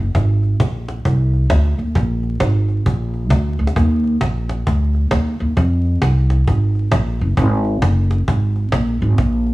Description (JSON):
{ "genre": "ska", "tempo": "133 BPM", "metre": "4/4", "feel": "swing 62% on 8ths", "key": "unclear", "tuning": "A4 = 437 Hz", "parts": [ { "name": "upright bass", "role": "bass", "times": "0.0-9.5 s", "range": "F#1 to F2", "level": "-16 LUFS", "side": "equal", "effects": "none" }, { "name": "cajon", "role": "drums", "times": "0.1-9.5 s", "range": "none", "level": "-20 LUFS", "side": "equal", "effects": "none" } ], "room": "light reverb", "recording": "vinyl crackle, small room ambience", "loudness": "-15 LUFS", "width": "side -19 dB against mid", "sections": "0.0-9.5 A section", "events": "none", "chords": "none" }